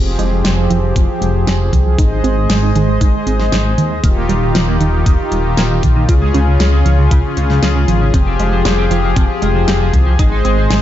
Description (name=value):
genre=synthwave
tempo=117 BPM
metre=4/4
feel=straight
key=F minor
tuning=A4 = 442 Hz
part: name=brassy analog pad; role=sustained chords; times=0.0-10.8 s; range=Db3 to Eb5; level=-18 LUFS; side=left 1 dB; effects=chorus, sidechain pumping
part: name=warbly dusty pluck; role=arpeggios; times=0.0-10.8 s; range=Eb3 to F4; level=-21 LUFS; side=right 3 dB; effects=chorus, diffuse ambient delay
part: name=dark detuned saw bass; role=bass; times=0.0-10.8 s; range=Eb1 to Eb2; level=-14 LUFS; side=equal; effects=none
part: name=clean electric guitar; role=riff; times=0.1-10.7 s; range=Db3 to Ab4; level=-24 LUFS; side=right 1 dB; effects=ensemble chorus, low-pass filter, diffuse ambient delay
part: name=pop drum kit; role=drums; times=0.2-10.8 s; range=hi-hat, snare drum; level=-21 LUFS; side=equal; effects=small room reverb
part: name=electronic kick drum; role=drums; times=1.0-10.3 s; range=none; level=-14 LUFS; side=equal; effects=small room reverb
room=light reverb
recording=nothing above 7.7 kHz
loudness=-11 LUFS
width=side -12 dB against mid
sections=0.0-10.8 A section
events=filter sweep on clean electric guitar 0.0-10.8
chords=0.0 Fmadd9; 2.0 Ab; 4.0 Ebadd9; 6.1 Db; 8.1 Fmadd9; 10.2 Ab